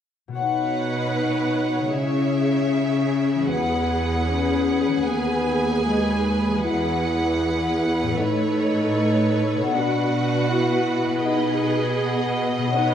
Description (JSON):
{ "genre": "cinematic, emotional film score for orchestra", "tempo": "78 BPM", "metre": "4/4", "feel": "rubato", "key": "E major", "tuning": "A4 = 440 Hz", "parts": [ { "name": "concert harp", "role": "arpeggios", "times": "0.3-12.9 s", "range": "A2 to C#5", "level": "-30 LUFS", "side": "left 6 dB", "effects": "none" }, { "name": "rich symphonic violin section", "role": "melody", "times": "0.4-12.9 s", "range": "C#5 to G#5", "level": "-29 LUFS", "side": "equal", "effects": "none" }, { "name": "warm symphonic violin section", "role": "second line", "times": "0.4-12.9 s", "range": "B4 to C#5", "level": "-30 LUFS", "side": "equal", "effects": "none" }, { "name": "warm symphonic viola section", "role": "accompaniment", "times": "0.4-12.9 s", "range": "F#4 to B4", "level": "-29 LUFS", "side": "right 2 dB", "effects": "none" }, { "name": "dark French horn section", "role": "sustained chords", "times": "0.4-12.9 s", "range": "G#3 to E4", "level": "-23 LUFS", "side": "left 2 dB", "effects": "none" }, { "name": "clear symphonic cello section", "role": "bass", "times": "0.4-12.9 s", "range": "D#2 to C#3", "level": "-26 LUFS", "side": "right 3 dB", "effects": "none" } ], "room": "moderate recital hall reverb, RT60 1.6 s", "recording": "dark, warm production", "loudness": "-20 LUFS", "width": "side -9 dB against mid", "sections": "0.4-12.9 A section", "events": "none", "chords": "0.4 Badd9; 2.0 C#m; 3.5 Eadd9; 5.1 G#m/D#; 6.7 Eadd9; 8.2 Aadd9; 9.7 Bm; 11.2 G#m/B" }